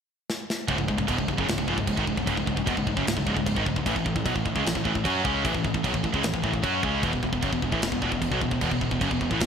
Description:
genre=heavy metal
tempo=151 BPM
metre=4/4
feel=straight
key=C# minor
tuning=A4 = 440 Hz
part: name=tight metal drum kit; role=drums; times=0.3-9.5 s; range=crash cymbal, kick drum, snare drum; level=-30 LUFS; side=equal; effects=gated reverb
part: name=fuzz guitar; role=riff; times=0.7-9.5 s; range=C#2 to F#4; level=-32 LUFS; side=equal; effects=distortion
part: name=heavy high-gain guitar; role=riff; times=0.7-9.5 s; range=C#2 to F#4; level=-30 LUFS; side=left 10 dB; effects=distortion
part: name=high-gain distorted guitar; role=riff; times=0.7-9.5 s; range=C#2 to F#4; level=-29 LUFS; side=right 9 dB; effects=distortion
part: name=picked electric bass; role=bass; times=0.7-9.5 s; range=C#1 to F#2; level=-32 LUFS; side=equal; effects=none
room=light reverb, studio reverb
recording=bright 1980s-style digital production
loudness=-23 LUFS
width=side -7 dB against mid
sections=0.7-9.5 A section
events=drum fill 0.3-0.7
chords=0.0 N.C.; 0.7 C#m; 3.9 A5; 7.0 E5

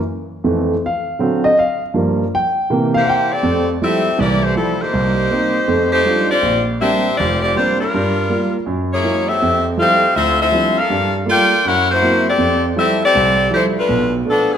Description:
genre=jazz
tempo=161 BPM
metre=4/4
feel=swing 64% on 8ths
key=F major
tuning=A4 = 436 Hz
part: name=warm grand piano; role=accompaniment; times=0.4-14.5 s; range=F1 to G5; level=-17 LUFS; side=right 2 dB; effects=none
part: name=bright saxophone section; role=melody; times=3.0-14.6 s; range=F3 to G5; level=-15 LUFS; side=left 2 dB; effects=none
room=wet large studio reverb, RT60 1.4 s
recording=none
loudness=-14 LUFS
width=side -8 dB against mid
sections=0.0-3.4 A section; 3.4-14.6 B section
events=grand piano solo 0.0-3.4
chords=0.4 Fmaj7; 1.2 D7b9; 1.9 Gm7; 2.7 C7; 3.4 Fmaj9; 4.9 Cm7; 5.7 F13; 6.4 Bb69; 7.9 Gm7; 8.7 Gb9; 9.4 Fmaj9; 10.2 Dm11; 10.9 Gm9; 11.6 Gb7#11; 12.4 Fmaj9; 13.9 Bm7b5

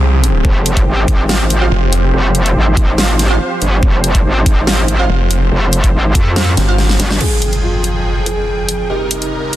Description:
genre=heavy wobble dubstep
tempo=142 BPM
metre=4/4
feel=half-time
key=F minor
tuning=A4 = 444 Hz
part: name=supersaw chords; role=sustained chords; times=0.0-9.6 s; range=C2 to G5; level=-21 LUFS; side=equal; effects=sidechain pumping, low-pass filter
part: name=snarling distorted saw bass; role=bass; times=0.0-2.1, 5.1-7.0 s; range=F1 to C2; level=-12 LUFS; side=equal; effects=overdrive
part: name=dubstep drum kit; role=drums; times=0.2-9.6 s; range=crash cymbal, hi-hat, snare drum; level=-18 LUFS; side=equal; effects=none
part: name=metallic wobble bass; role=bass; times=0.4-7.2 s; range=F1 to F2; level=-13 LUFS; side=equal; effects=chorus, overdrive
part: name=electronic kick drum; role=drums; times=0.4-6.2 s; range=none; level=-12 LUFS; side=equal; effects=none
part: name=orchestra-hit-like synth stab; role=stabs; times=1.3-6.7 s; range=F4 to F5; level=-23 LUFS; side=right 4 dB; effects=built-in reverb, cassette tape, dub echo
part: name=felt-muted upright piano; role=melody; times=7.2-9.6 s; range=F4 to Ab4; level=-21 LUFS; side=right 1 dB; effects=dub echo
part: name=impact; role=sound effects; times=7.2-8.9 s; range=none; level=-19 LUFS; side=equal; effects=none
room=light reverb, digital ambience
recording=dense, heavily limited modern master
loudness=-11 LUFS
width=side -14 dB against mid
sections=0.0-7.2 A section; 7.2-9.6 B section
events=drop 0.0-7.2; kick drops out 6.8-7.2; drum fill 6.8-7.2; band accent 7.1; impact 7.2-8.9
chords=0.0 Fmadd9; 8.9 Cm7

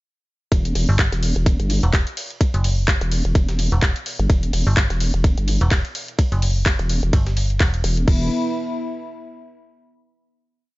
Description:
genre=bass house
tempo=127 BPM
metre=4/4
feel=swing 57% on 16ths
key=E minor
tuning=A4 = 437 Hz
part: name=dark analog pad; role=sustained chords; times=0.5-8.3 s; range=B3 to B5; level=-25 LUFS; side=left 1 dB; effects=chorus, sidechain pumping
part: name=vowel-sweep wobble bass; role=bass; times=0.5-8.3 s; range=E1 to G1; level=-20 LUFS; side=equal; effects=chorus, tube saturation, sidechain pumping
part: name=breakbeat sampler-style drum kit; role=drums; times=0.5-8.0 s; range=ride cymbal, snare drum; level=-35 LUFS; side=right 3 dB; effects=sidechain pumping on cymbals, high-pass filter on cymbals, high-pass filter on snare
part: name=electronic kick drum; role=drums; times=0.5-8.2 s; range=none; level=-18 LUFS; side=equal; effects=none
part: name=house drum kit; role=drums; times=0.5-8.2 s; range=crash cymbal, handclaps, hi-hat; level=-26 LUFS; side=left 1 dB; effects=none
part: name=metallic FM bass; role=bass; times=0.9-7.8 s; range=E1 to G1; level=-19 LUFS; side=equal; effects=overdrive, sidechain pumping
room=little or no reverb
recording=nothing above 7.6 kHz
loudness=-17 LUFS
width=side -20 dB against mid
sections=0.5-8.1 drop; 8.1-10.0 final chord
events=drop 0.5-8.1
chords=0.5 E5

